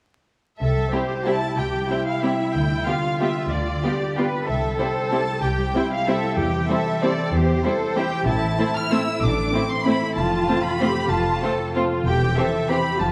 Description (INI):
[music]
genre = classical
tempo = 189 BPM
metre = 3/4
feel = uneven beats, rubato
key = C major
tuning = A4 = 440 Hz
[part]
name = rich chamber violin section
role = melody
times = 0.6-13.1 s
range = C5 to F6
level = -29 LUFS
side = equal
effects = none
[part]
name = concert harp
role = arpeggios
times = 0.6-13.1 s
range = E2 to C5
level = -30 LUFS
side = equal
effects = none
[part]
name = dark studio double bass section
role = bass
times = 0.6-13.1 s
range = E1 to E2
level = -28 LUFS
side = equal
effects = none
[part]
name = rich chamber cello section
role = bass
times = 0.6-13.1 s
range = C4 to B4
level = -28 LUFS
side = equal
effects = none
[part]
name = rich chamber violin section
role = second line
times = 0.9-12.8 s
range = E4 to C5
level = -33 LUFS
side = equal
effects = none
[part]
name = warm studio viola section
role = accompaniment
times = 0.9-12.8 s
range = E3 to C4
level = -29 LUFS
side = equal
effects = none
[sound]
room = wet concert hall reverb, RT60 1.8 s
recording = vinyl crackle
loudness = -22 LUFS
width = mono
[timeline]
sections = 0.6-13.1 A section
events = none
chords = 0.6 C; 2.6 G7/D; 4.5 C; 6.4 C/E; 8.3 Am; 10.2 F; 12.1 C/E